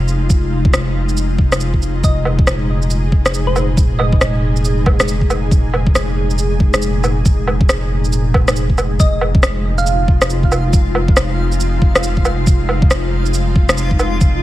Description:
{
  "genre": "future garage",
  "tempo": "138 BPM",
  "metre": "4/4",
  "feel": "swing 62% on 16ths",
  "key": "F minor",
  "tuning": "A4 = 438 Hz",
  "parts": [
    { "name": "ethereal airy pad", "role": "sustained chords", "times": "0.0-14.4 s", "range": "Bb2 to Ab4", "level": "-20 LUFS", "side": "equal", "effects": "ensemble chorus, built-in reverb, sidechain pumping" },
    { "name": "warm sub bass", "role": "bass", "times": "0.0-14.4 s", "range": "F1", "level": "-18 LUFS", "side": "equal", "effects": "sidechain pumping" },
    { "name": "electronic shaker, rim click and woodblock", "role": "drums", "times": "0.1-14.3 s", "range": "none", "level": "-18 LUFS", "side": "right 1 dB", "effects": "none" },
    { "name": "electronic kick drum", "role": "drums", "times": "0.3-14.3 s", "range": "none", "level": "-13 LUFS", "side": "equal", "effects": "none" },
    { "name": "thumb-piano-like synth pluck", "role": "melody", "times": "2.0-4.4, 9.0-10.1 s", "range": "C5 to F5", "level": "-25 LUFS", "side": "right 2 dB", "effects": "chorus, phaser, vintage 12-bit sampler grit, dub echo" },
    { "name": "backwards swelling texture", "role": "texture", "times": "9.9-14.4 s", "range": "F4 to F5", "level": "-26 LUFS", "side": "left 2 dB", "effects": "built-in reverb" }
  ],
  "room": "little or no reverb",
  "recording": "vinyl crackle",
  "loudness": "-12 LUFS",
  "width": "side -15 dB against mid",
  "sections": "0.0-9.0 A section; 9.0-14.4 B section",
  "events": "none",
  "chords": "0.0 Fm7; 2.0 Ebsus4/F; 9.0 Fm7",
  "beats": "| 0.30 0.73 1.17 1.60 | 2.04 2.47 2.91 3.34 | 3.78 4.21 4.64 5.08 | 5.51 5.95 6.38 6.82 | 7.25 7.69 8.12 8.56 | 8.99 9.43 9.86 10.30 | 10.73 11.17 11.60 12.04 | 12.47 12.91 13.34 13.78 | 14.21"
}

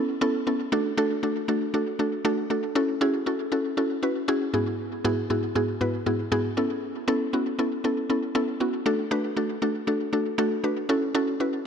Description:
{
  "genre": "pop",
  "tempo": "118 BPM",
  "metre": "4/4",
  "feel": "straight",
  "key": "unclear",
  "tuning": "A4 = 440 Hz",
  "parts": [
    { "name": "mallet-like synth pluck", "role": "solo", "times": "0.0-11.6 s", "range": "G#2 to B4", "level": "-24 LUFS", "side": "equal", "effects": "chorus, tape echo" }
  ],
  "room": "moderate plate reverb, RT60 3.2 s",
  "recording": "dark, warm production",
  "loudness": "-24 LUFS",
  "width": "side -7 dB against mid",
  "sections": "0.7-11.7 A section",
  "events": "none",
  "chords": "0.0 Aadd9; 0.7 D; 2.8 F#m7; 4.5 Eadd9/G#; 6.6 Aadd9; 8.9 D; 10.9 F#m7",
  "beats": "0.21 | 0.72 1.23 1.74 2.25 | 2.76 3.27 3.77 4.28 | 4.79 5.30 5.81 6.32 | 6.83 7.33 7.84 8.35 | 8.86 9.37 9.88 10.38 | 10.89 11.40"
}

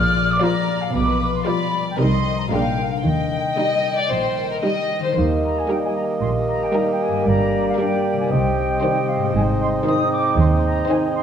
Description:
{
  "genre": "cinematic",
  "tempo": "115 BPM",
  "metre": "4/4",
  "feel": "straight",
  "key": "Eb major",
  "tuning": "A4 = 440 Hz",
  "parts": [
    { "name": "dark chamber violin section", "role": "second line", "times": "0.0-11.2 s", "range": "C4 to G5", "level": "-29 LUFS", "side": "left 3 dB", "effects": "none" },
    { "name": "mellow small flute group", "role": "second line", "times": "0.0-11.2 s", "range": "Eb5 to F6", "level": "-25 LUFS", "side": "right 1 dB", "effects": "none" },
    { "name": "concert harp", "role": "arpeggios", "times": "0.0-11.2 s", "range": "G2 to C5", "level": "-26 LUFS", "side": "left 6 dB", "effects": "none" },
    { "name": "dark studio double bass section", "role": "bass", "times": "0.0-10.8 s", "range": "G1 to Eb2", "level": "-23 LUFS", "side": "right 2 dB", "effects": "none" },
    { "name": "warm studio cello section", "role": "bass", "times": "0.0-10.8 s", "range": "Eb2 to Eb3", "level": "-26 LUFS", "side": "right 2 dB", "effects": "none" },
    { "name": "warm studio violin section", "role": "melody", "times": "0.4-11.2 s", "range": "Bb4 to Eb5", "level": "-25 LUFS", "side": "left 3 dB", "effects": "none" },
    { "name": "dark studio viola section", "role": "accompaniment", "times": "0.4-11.2 s", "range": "Eb3 to F4", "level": "-27 LUFS", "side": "right 1 dB", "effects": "none" },
    { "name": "clear clarinet", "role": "second line", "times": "5.2-11.2 s", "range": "Eb4 to G4", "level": "-28 LUFS", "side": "left 3 dB", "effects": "none" },
    { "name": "mellow cor anglais", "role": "second line", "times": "5.2-11.2 s", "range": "D5 to Eb5", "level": "-26 LUFS", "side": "right 4 dB", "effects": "none" },
    { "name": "warm bassoon", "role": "accompaniment", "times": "5.2-11.2 s", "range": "Bb3 to C4", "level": "-24 LUFS", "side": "right 2 dB", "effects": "none" },
    { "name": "warm French horn section", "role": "sustained chords", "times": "5.7-11.1 s", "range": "G3 to Eb4", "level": "-29 LUFS", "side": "left 1 dB", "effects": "none" }
  ],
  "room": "wet scoring stage reverb, RT60 2.1 s",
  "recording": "none",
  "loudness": "-17 LUFS",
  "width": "side -8 dB against mid",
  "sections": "0.0-5.2 A section; 5.2-11.2 B section",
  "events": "none",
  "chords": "0.0 Bb; 0.9 G7/B; 2.0 Cm7; 2.5 Bb7; 3.0 Eb; 7.3 Gm; 8.3 Cm; 9.3 Ab",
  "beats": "0.42 | 0.94 1.46 1.99 2.51 | 3.04 3.58 4.11 4.64 | 5.18 5.70 6.22 6.74 | 7.26 7.79 8.31 8.82 | 9.34 9.86 10.38 10.89"
}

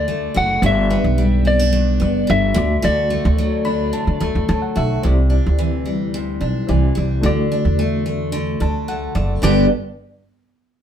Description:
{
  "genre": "acoustic pop",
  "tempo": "109 BPM",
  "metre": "4/4",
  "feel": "straight",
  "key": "G major",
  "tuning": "A4 = 441 Hz",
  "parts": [
    { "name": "electric slide guitar", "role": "melody", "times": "0.0-4.5 s", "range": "D5 to F#5", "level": "-21 LUFS", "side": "left 3 dB", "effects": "none" },
    { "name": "barky reed electric piano", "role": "accompaniment", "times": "0.0-9.7 s", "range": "A3 to B5", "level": "-25 LUFS", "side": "equal", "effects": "overdrive, fast tremolo" },
    { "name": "picked steel-string acoustic guitar", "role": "accompaniment", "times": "0.0-9.7 s", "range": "G2 to G4", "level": "-20 LUFS", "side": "left 1 dB", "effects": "none" },
    { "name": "upright bass", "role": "bass", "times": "0.0-9.7 s", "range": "F#1 to D3", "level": "-19 LUFS", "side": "right 1 dB", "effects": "none" }
  ],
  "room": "moderate studio reverb, RT60 0.8 s",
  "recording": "band playing live in one room",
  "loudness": "-15 LUFS",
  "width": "side -9 dB against mid",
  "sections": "0.0-5.0 A section; 5.0-9.4 B section; 9.4-10.8 C section",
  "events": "reed electric piano fill 3.4-5.0, 8.3-9.4",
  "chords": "0.0 D; 0.6 G; 2.6 D; 5.0 Cadd9; 7.2 D; 9.4 G",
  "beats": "0.09 | 0.64 1.19 1.74 2.29 | 2.83 3.38 3.93 4.48 | 5.03 5.58 6.13 6.68 | 7.23 7.78 8.33 8.88 | 9.43"
}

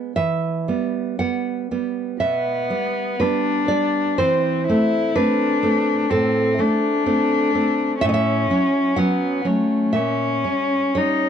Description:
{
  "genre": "romantic duo for cello and classical guitar",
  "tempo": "54-64 BPM",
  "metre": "4/4",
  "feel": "rubato",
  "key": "E minor",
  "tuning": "A4 = 440 Hz",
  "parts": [
    { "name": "nylon-string guitar", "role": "accompaniment", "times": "0.0-11.3 s", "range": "A2 to F#5", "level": "-20 LUFS", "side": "right 3 dB", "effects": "none" },
    { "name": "warm cello", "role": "melody", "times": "2.2-11.3 s", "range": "A3 to E4", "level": "-21 LUFS", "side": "left 4 dB", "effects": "none" }
  ],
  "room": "light reverb",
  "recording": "dark, warm production",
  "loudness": "-18 LUFS",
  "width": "side -8 dB against mid",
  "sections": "0.2-11.3 A section",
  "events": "none",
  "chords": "0.2 Em; 4.2 Am/E; 8.0 F#m7/A; 9.9 A#dim7",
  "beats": "| 0.16 1.19 2.20 3.19 | 4.18 5.16 6.11 7.06 | 8.03 8.98 9.95 10.96"
}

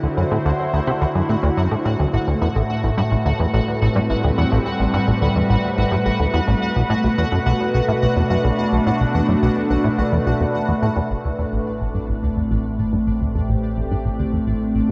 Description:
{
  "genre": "ambient, sequencer-driven space music",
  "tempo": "107 BPM",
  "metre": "4/4",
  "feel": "straight",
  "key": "A dorian",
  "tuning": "A4 = 439 Hz",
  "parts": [
    { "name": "phased analog pad", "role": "sustained chords", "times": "0.0-14.9 s", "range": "A2 to C5", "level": "-23 LUFS", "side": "equal", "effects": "phaser, chorus" },
    { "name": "plucky analog bass", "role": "riff", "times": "0.0-14.9 s", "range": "A1 to C3", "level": "-22 LUFS", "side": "equal", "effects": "analog chorus, tape echo" },
    { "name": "pulsing gated texture", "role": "texture", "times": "0.0-14.9 s", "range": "D4 to F#5", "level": "-31 LUFS", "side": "equal", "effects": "chorus, built-in reverb" },
    { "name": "warm sub bass", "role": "bass", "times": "11.1-14.9 s", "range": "A1", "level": "-32 LUFS", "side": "equal", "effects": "none" }
  ],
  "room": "moderate huge ambient reverb, RT60 8.1 s",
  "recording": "worn, warbling old tape, cassette tape, warbly pitch drift",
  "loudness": "-20 LUFS",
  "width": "mono",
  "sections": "0.0-11.1 A section; 11.1-14.9 B section",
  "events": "fade-in on synth texture 0.0-11.1; filter sweep on analog synth bass 11.1-14.9",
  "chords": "0.0 D7; 2.1 Am7; 6.6 Bm7; 11.1 Am7",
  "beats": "0.45 1.01 1.57 | 2.13 2.69 3.25 3.81 | 4.38 4.94 5.50 6.06 | 6.62 7.18 7.74 8.30 | 8.86 9.42 9.98 10.54 | 11.10 11.66 12.23 12.79 | 13.35 13.91 14.47"
}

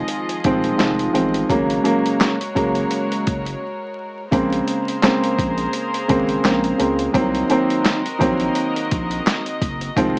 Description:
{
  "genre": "hip hop, boom-bap hip-hop",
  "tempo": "85 BPM",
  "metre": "4/4",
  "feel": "swing 56% on 16ths",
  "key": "Bb minor",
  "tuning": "A4 = 439 Hz",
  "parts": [
    { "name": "warm upright piano", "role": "accompaniment", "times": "0.0-10.2 s", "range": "Db3 to C4", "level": "-18 LUFS", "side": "equal", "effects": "high-pass filter, low-pass filter" },
    { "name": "warm studio string section", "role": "sustained chords", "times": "0.0-10.2 s", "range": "F3 to Eb5", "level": "-26 LUFS", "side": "equal", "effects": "high-pass filter, low-pass filter" },
    { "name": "saturated sub bass", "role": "bass", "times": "0.0-10.2 s", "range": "Eb1 to Db2", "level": "-27 LUFS", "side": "equal", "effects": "none" },
    { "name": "boom bap sampler-style drum kit", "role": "drums", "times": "0.1-10.2 s", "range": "handclaps, hi-hat, kick drum, snare drum", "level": "-22 LUFS", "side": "equal", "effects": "none" }
  ],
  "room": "moderate small room reverb, RT60 0.5 s",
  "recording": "vinyl crackle, small speaker sound",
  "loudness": "-17 LUFS",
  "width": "side -30 dB against mid",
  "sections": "0.0-4.3 A section; 4.3-10.2 B section",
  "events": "break 3.6-4.3",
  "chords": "0.0 Fm7; 1.5 Ab9sus4; 4.3 Bbm9; 7.1 Cm7b5",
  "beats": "0.09 0.79 | 1.50 2.20 2.91 3.62 | 4.32 5.03 5.73 6.44 | 7.14 7.85 8.56 9.26 | 9.97"
}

